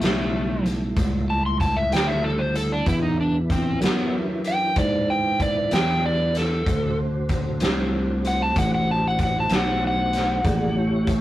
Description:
slow blues; 63 BPM (dotted quarters); 12/8; straight; A4 = 441 Hz
overdriven slide guitar; melody; 0.0-11.1 s; A3 to C6; -24 LUFS; equal
mellow tonewheel organ; sustained chords; 0.0-11.2 s; C#3 to D5; -29 LUFS; right 1 dB; slow rotary speaker, chorus vibrato
fingered electric bass; bass; 0.0-11.2 s; A1 to G#2; -25 LUFS; equal
raw garage drum kit; drums; 0.0-11.2 s; hi-hat, kick drum, snare drum; -26 LUFS; equal
moderate small room reverb, RT60 0.6 s; rough rehearsal-room recording, warm saturation; -20 LUFS; side -14 dB against mid
0.0-11.2 A section
electric slide guitar solo 0.0-11.2
0.0 A7; 2.9 E7; 6.7 D7; 10.4 A7

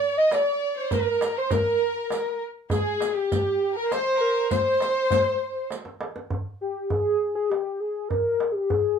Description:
Persian modal ensemble; 100 BPM; 3/4; straight; C dastgah shur; A4 = 443 Hz
warm velvety synth lead; melody; 0.0-9.0 s; G4 to Eb5; -23 LUFS; equal; chorus
rich kamancheh; second line; 0.0-5.7 s; G4 to Eb5; -30 LUFS; left 1 dB
warm chamber violin section; second line; 0.0-5.7 s; G4 to Eb5; -32 LUFS; left 2 dB
riq; percussion; 0.3-5.9 s; -34 LUFS; right 4 dB
tombak; percussion; 0.3-8.8 s; -30 LUFS; right 1 dB
moderate studio reverb, RT60 0.5 s; minimal, uncompressed stereo recording; -22 LUFS; side -7 dB against mid
0.0-6.3 A section; 6.3-9.0 B section
drum fill 5.7-6.3

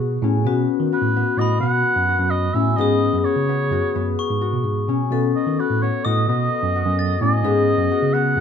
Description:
contemporary instrumental, chamber music in an uneven meter; 130 BPM; 5/4; straight; B mixolydian; A4 = 438 Hz
vibraphone with medium hard mallets; second line; 0.0-8.4 s; F#4 to A4; -25 LUFS; left 3 dB
concert harp; arpeggios; 0.0-8.4 s; B3 to F#4; -24 LUFS; left 13 dB
bell-like tine electric piano; bass; 0.0-8.4 s; F#2 to D#3; -22 LUFS; right 2 dB; medium stereo tremolo
warm oboe; melody; 0.9-8.4 s; B4 to F#5; -23 LUFS; right 3 dB
glockenspiel with hard plastic mallets; texture; 1.4-7.6 s; B5 to A6; -30 LUFS; left 1 dB
light reverb; close, detailed microphones; -17 LUFS; side -7 dB against mid
0.0-8.4 A section
0.5 B7; 2.8 G#m7; 5.1 B7; 7.4 G#m7

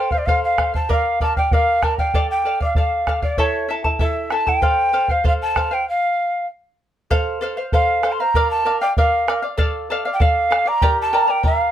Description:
andean folk, Andean ensemble; 97 BPM; 2/4; straight; A4 = 440 Hz
mellow quena; melody; 0.0-11.7 s; C#5 to C6; -18 LUFS; equal
charango; accompaniment; 0.0-11.7 s; E4 to Bb5; -22 LUFS; equal
bombo; percussion; 0.1-11.6 s; -20 LUFS; equal
little or no reverb; close, detailed microphones; -16 LUFS; side -10 dB against mid
0.0-7.1 A section; 7.1-11.7 B section
stop 5.9-7.1
0.0 F; 0.9 Bb; 2.1 Dm; 3.4 A; 4.6 F; 5.9 N.C.; 7.1 F; 8.3 Bb; 9.6 Dm; 10.8 Gm

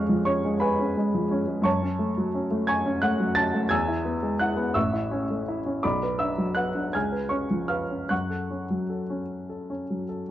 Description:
classical, romantic character piece for solo piano; 50-59 BPM (dotted quarters); 6/8; rubato; F# minor; A4 = 440 Hz
warm baby grand piano; solo; 0.0-10.3 s; A1 to A6; -24 LUFS; equal
light reverb; worn, warbling old tape, cassette tape, warbly pitch drift; -24 LUFS; side -13 dB against mid
0.0-10.3 A section
0.0 C#7/E#; 1.7 F#m; 3.7 E; 4.8 A; 5.8 Bm; 6.9 C#7; 8.1 F#m

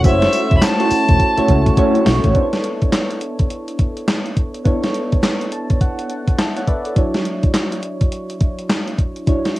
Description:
R&B, new jack swing; 104 BPM; 4/4; swing 62% on 16ths; B minor; A4 = 440 Hz
rich violin; melody; 0.0-1.8 s; E5 to B5; -20 LUFS; equal; cassette tape
soft electric-piano-like synth keys; accompaniment; 0.0-9.6 s; F#3 to A5; -20 LUFS; equal; chorus, phaser, cassette tape
vintage muted fingered electric bass; bass; 0.0-2.3 s; E1 to C#2; -18 LUFS; equal
gated 80s digital drum machine; drums; 0.0-9.6 s; handclaps, hi-hat, kick drum, snare drum, tambourine; -17 LUFS; equal; gated reverb, gated reverb snare, cassette tape
light reverb; home recording on cassette; -15 LUFS; side -17 dB against mid
0.0-2.3 A section; 2.3-9.6 B section
drum fill 1.2-2.3; synth keys fill 5.2-7.0
0.0 F#m7; 2.3 Bm11; 7.0 Dmaj9

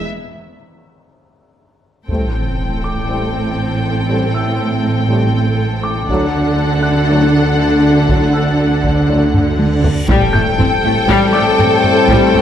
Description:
cinematic, hybrid orchestral and electronic film score; 120 BPM; 4/4; straight; A dorian; A4 = 440 Hz
rich symphonic violin section; melody; 0.0-12.4 s; F#5 to G5; -21 LUFS; left 4 dB
clear trombone section; sustained chords; 0.0-12.4 s; A2 to G3; -24 LUFS; right 3 dB
felt-muted upright piano; texture; 0.0-12.4 s; D5 to G6; -26 LUFS; equal; digital delay
warm symphonic violin section; second line; 2.1-12.4 s; A4; -22 LUFS; left 2 dB
clear symphonic viola section; accompaniment; 2.1-12.4 s; G3 to D4; -21 LUFS; left 2 dB
mellow French horn section; sustained chords; 2.1-12.4 s; A3 to D4; -21 LUFS; left 4 dB
dark symphonic cello section; bass; 2.1-12.4 s; A2 to D3; -17 LUFS; right 2 dB
rich symphonic double bass section; bass; 2.1-12.4 s; A1 to D2; -19 LUFS; right 2 dB
solo taiko drums; drums; 2.1-3.0, 6.1-12.4 s; -19 LUFS; equal
sub drop, reverse cymbal and impact; sound effects; 2.1-4.1, 9.7-12.1 s; -24 LUFS; equal
moderate scoring stage reverb, RT60 1.6 s; lossy compression artefacts; -12 LUFS; side -9 dB against mid
0.0-2.1 A section; 2.1-10.1 B section; 10.1-12.4 C section
break 0.1-2.1; impact 2.1-4.1, 10.1-12.1; drum fill 9.3-10.1; reverse cymbal 9.7-10.1
0.0 N.C.; 2.1 Am7; 6.1 D; 10.1 Am7

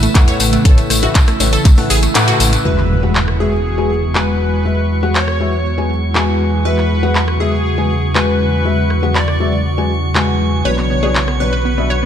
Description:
progressive house; 120 BPM; 4/4; straight; E mixolydian; A4 = 440 Hz
shimmering ambient pad; sustained chords; 0.0-12.1 s; C#3 to F#4; -22 LUFS; right 1 dB; chorus, built-in reverb, sidechain pumping
wide unison pluck; arpeggios; 0.0-2.6, 10.7-12.1 s; A3 to C#5; -21 LUFS; right 2 dB; sidechain pumping, dub echo
dark detuned saw bass; bass; 0.0-12.1 s; A1 to A2; -18 LUFS; equal; sidechain pumping
house drum kit; drums; 0.0-11.4 s; handclaps, hi-hat, rim click; -20 LUFS; equal; sidechain pumping on hats
tambourine; percussion; 0.0-2.6 s; -22 LUFS; left 4 dB
drifting glass-harmonics texture; texture; 0.0-12.1 s; E5 to C#6; -28 LUFS; right 1 dB; chorus, built-in reverb, sidechain pumping
felt-muted upright piano; stabs; 0.2-11.9 s; A2 to G#5; -19 LUFS; left 4 dB; sidechain pumping, dub echo
electronic kick drum; drums; 0.2-1.8 s; -9 LUFS; equal
plucky unison lead; melody; 2.7-12.1 s; G#4 to D5; -24 LUFS; right 1 dB; ping-pong delay
soft supersaw; second line; 2.7-12.1 s; G#4 to D5; -26 LUFS; right 1 dB; cassette tape, sidechain pumping, dub echo
impact; sound effects; 2.7-4.7 s; -21 LUFS; equal
light reverb; -12 LUFS; side -9 dB against mid
0.0-2.7 A section; 2.7-12.1 B section
filter sweep on synth pluck 0.0-2.7; filter sweep on ambient pad 0.0-2.7; kick drops out 2.2-2.7; band accent 2.2; impact 2.7-4.7
0.0 Aadd9; 2.7 Eadd9; 10.7 Bmadd9

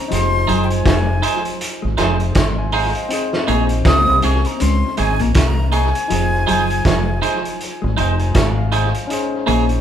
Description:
lovers rock reggae; 80 BPM; 4/4; swing 59% on 16ths; Bb minor; A4 = 444 Hz
breathy jazz flute; melody; 0.0-7.9 s; G5 to Eb6; -21 LUFS; equal
barky tine electric piano; accompaniment; 0.0-9.8 s; C4 to C6; -25 LUFS; left 3 dB; overdrive, tube saturation, tape echo
mellow electric guitar; riff; 0.1-9.7 s; F3 to Db4; -25 LUFS; left 2 dB; tape echo
deep dub fingered electric bass; bass; 0.1-9.8 s; F1 to Db2; -18 LUFS; equal
vintage drum kit; drums; 0.1-9.8 s; hi-hat, kick drum, snare drum; -20 LUFS; right 1 dB; tape echo
twangy electric guitar; stabs; 0.5-9.6 s; Eb4 to Db5; -23 LUFS; right 5 dB
moderate large studio reverb, RT60 1.3 s; band playing live in one room; -15 LUFS; side -9 dB against mid
0.0-9.8 A section
tine electric piano fill 7.6-9.1
0.1 Fm7; 3.1 Bbm11; 6.1 Fm7; 9.1 Bbm11

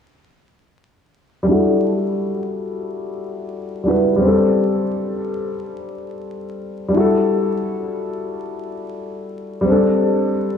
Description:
hip hop; 88 BPM; 4/4; swing 58% on 16ths; E minor; A4 = 440 Hz
dark upright piano; solo; 1.4-10.6 s; G3 to B4; -18 LUFS; left 1 dB; low-pass filter, tape echo
moderate plate reverb, RT60 2.9 s; worn, warbling old tape, cassette tape, vinyl crackle, warbly pitch drift, studio reverb; -17 LUFS; side -7 dB against mid
1.5-6.9 A section; 6.9-10.6 B section
filter sweep on upright piano 1.5-6.9
1.5 Em11; 4.2 D7sus4; 6.9 Em11; 9.7 D7sus4

